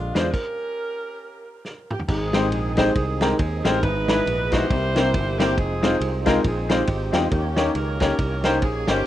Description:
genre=uptempo gospel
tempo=138 BPM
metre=4/4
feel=swing 59% on 8ths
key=Ab major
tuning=A4 = 440 Hz
part: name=clear saxophone section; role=melody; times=0.0-9.1 s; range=Ab3 to C5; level=-28 LUFS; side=right 1 dB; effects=analog delay
part: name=tonewheel organ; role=sustained chords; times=0.0-9.0 s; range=D3 to D#5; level=-31 LUFS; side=right 2 dB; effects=slow rotary speaker, overdrive, chorus vibrato
part: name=fingered electric bass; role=bass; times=0.0-9.0 s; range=F1 to Fb2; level=-26 LUFS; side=right 1 dB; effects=none
part: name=bright grand piano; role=accompaniment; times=0.1-9.0 s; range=Ab2 to Db5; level=-23 LUFS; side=left 2 dB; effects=none
part: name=warm soul drum kit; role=drums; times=0.2-9.0 s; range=crash cymbal, hi-hat, kick drum, ride cymbal, snare drum, toms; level=-25 LUFS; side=right 1 dB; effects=vintage 12-bit sampler grit
room=moderate studio reverb, RT60 0.5 s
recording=rough home demo mix, cassette tape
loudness=-19 LUFS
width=side -12 dB against mid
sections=0.0-2.1 A section; 2.1-9.1 B section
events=stop 0.3-2.1; drum fill 1.6-2.1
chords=0.3 Gdim/Db; 2.1 Abmaj7; 3.8 Emaj7/G#; 4.7 C7; 5.6 Fm7; 7.3 Eb7

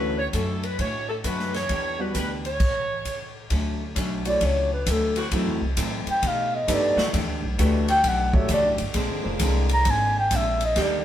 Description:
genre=jazz, big band swing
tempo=132 BPM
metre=4/4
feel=swing 66% on 8ths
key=unclear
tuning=A4 = 440 Hz
part: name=warm saxophone section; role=melody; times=0.0-3.3 s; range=A4 to C#5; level=-28 LUFS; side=right 1 dB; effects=none
part: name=vintage hollow-body jazz guitar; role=accompaniment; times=0.0-11.0 s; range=F#2 to G4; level=-32 LUFS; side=left 2 dB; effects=none
part: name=warm concert grand piano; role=accompaniment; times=0.0-9.8 s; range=G3 to C#5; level=-30 LUFS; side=equal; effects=none
part: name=upright bass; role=bass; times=0.0-11.0 s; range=F1 to B2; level=-26 LUFS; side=equal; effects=none
part: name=swinging big-band drum kit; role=drums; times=0.3-10.9 s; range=crash cymbal, hi-hat, kick drum, ride cymbal, snare drum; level=-29 LUFS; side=equal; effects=none
part: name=breathy clarinet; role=melody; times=4.3-11.0 s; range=A4 to Bb5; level=-22 LUFS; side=equal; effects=none
part: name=clear saxophone section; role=sustained chords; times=5.2-11.0 s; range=D3 to Ab4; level=-32 LUFS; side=right 1 dB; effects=none
room=moderate stone room reverb, RT60 0.9 s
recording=band playing live in one room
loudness=-21 LUFS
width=side -11 dB against mid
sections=0.0-3.5 A section; 3.5-11.0 B section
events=clarinet solo 3.5-11.0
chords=0.0 Dmaj7; 1.7 Em7; 2.6 N.C.; 3.5 Dmaj7; 5.3 F#m7b5; 6.2 B7alt; 7.1 Em11; 8.9 Bb9

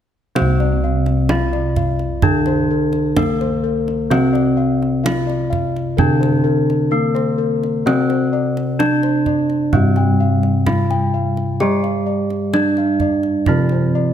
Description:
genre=Javanese gamelan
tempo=64 BPM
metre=4/4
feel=straight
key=C slendro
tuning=A4 = 440 Hz
part: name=gamelan-type bronze metallophone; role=melody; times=0.4-14.1 s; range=Bb3-45c to G4+25c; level=-20 LUFS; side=right 1 dB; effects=none
part: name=gamelan-type bronze metallophone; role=accompaniment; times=0.4-14.1 s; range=C3 to G3+25c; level=-21 LUFS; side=left 1 dB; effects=none
part: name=gamelan-type bossed gongs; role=arpeggios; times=0.4-14.1 s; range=Bb4-45c to G5+25c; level=-24 LUFS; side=left 4 dB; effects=none
part: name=gamelan-type bossed gongs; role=bass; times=0.4-14.1 s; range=C2 to G4+25c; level=-20 LUFS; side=equal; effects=none
part: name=kendang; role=percussion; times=0.4-13.8 s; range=none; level=-23 LUFS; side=right 4 dB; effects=none
room=moderate concert hall reverb, RT60 1.8 s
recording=close, detailed microphones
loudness=-15 LUFS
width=side -9 dB against mid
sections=0.4-14.1 A section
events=none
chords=none

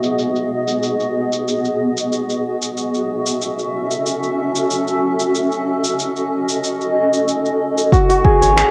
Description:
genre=organic downtempo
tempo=93 BPM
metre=4/4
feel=straight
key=F# dorian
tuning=A4 = 440 Hz
part: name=granular cloud pad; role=sustained chords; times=0.0-8.7 s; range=G#3 to E5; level=-20 LUFS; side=equal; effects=built-in reverb, sidechain pumping, cassette tape
part: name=santur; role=arpeggios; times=0.0-0.6, 7.9-8.7 s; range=E4 to C#5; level=-18 LUFS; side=equal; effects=cassette tape
part: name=afro-pop drum kit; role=drums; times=0.0-8.7 s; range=finger snaps, hi-hat, shaker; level=-26 LUFS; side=equal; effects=overdrive, low-pass filter on perc, cassette tape, low-pass filter on snare, low-pass filter on hats, low-pass filter on room
part: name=electronic kick drum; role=drums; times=7.9-8.4 s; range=none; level=-16 LUFS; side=equal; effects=cassette tape
part: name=round analog bass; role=bass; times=8.4-8.6 s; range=G#1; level=-23 LUFS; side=equal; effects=sidechain pumping
room=light reverb, digital ambience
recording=home recording on cassette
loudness=-18 LUFS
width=mono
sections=0.0-7.9 A section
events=none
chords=0.0 G#m7; 2.8 F#m7; 7.9 G#m7

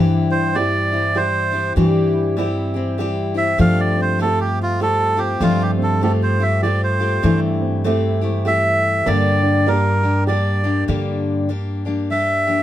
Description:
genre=acoustic folk duo or small band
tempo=99 BPM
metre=3/4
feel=swing 61% on 8ths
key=G dorian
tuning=A4 = 441 Hz
part: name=dark clarinet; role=second line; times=0.0-3.2 s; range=C4 to G4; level=-23 LUFS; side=left 2 dB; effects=none
part: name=picked steel-string acoustic guitar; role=accompaniment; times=0.0-12.6 s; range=G2 to G4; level=-21 LUFS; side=left 3 dB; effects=none
part: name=dark upright piano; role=arpeggios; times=0.0-11.0 s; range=E3 to G4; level=-24 LUFS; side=right 4 dB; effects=none
part: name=upright bass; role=bass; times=0.0-12.6 s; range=G2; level=-21 LUFS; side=equal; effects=none
part: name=melodica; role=melody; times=0.3-12.6 s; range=F4 to F5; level=-19 LUFS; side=right 2 dB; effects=none
room=light reverb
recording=none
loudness=-16 LUFS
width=side -12 dB against mid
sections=0.0-10.9 A section; 10.9-12.6 B section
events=melodica solo 0.0-10.9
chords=0.0 C/G; 3.6 F/G; 7.2 Am/G; 9.1 Gm

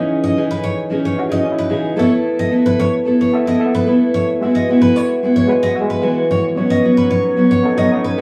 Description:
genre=acoustic pop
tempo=111 BPM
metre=4/4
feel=straight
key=unclear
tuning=A4 = 440 Hz
part: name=fingerpicked twelve-string acoustic guitar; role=accompaniment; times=0.0-8.2 s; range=B2 to A4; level=-17 LUFS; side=equal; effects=none
part: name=overdriven reed electric piano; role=accompaniment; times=0.0-8.2 s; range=F#3 to E5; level=-24 LUFS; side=equal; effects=fast tremolo
part: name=picked steel-string acoustic guitar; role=arpeggios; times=0.2-8.2 s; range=B4 to D#5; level=-24 LUFS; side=equal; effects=none
part: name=warm woodwind section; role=sustained chords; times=6.6-8.2 s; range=B2 to C#5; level=-30 LUFS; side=equal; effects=none
room=moderate studio ambience, RT60 0.5 s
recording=heard from further back in the room, small room reverb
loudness=-16 LUFS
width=mono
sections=0.0-8.2 A section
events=none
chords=0.0 C#madd9; 2.0 Asus2; 4.4 Eadd9; 6.6 Badd9

